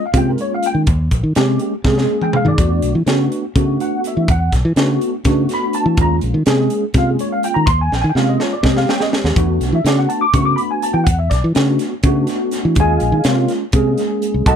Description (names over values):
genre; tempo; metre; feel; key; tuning
electric jazz fusion; 247 BPM (eighths); 7/8; straight; unclear; A4 = 442 Hz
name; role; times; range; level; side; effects
mellow tine electric piano; accompaniment; 0.0-14.6 s; G#3 to D6; -18 LUFS; equal; medium stereo tremolo, ensemble chorus
fingered electric bass; bass; 0.1-14.6 s; A#1 to E3; -16 LUFS; equal; none
crisp fusion drum kit; drums; 0.1-14.6 s; hi-hat, kick drum, snare drum, toms; -19 LUFS; equal; none
room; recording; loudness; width
little or no reverb; none; -14 LUFS; side -8 dB against mid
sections
0.0-14.6 A section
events
drum fill 1.9-2.6, 7.9-9.4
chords
0.0 D#9sus4; 2.6 E9sus4; 6.0 D#9sus4; 9.4 E9sus4; 12.8 D#9sus4